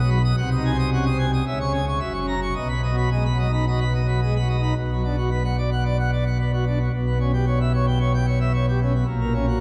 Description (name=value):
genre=classical, organ toccata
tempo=111 BPM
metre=4/4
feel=straight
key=B major, B minor from 4.8 s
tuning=A4 = 440 Hz
part: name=pipe organ, plenum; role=solo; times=0.0-9.6 s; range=F#1 to D#6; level=-22 LUFS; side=equal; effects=none
room=wet cathedral reverb, RT60 5.9 s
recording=vinyl crackle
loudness=-22 LUFS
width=mono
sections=0.0-4.8 A section; 4.8-9.6 B section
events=none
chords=0.4 G#7/B#; 1.5 C#m; 2.0 F#7; 2.6 B; 4.8 Bm; 6.9 C#m7b5/B; 9.1 F#/A#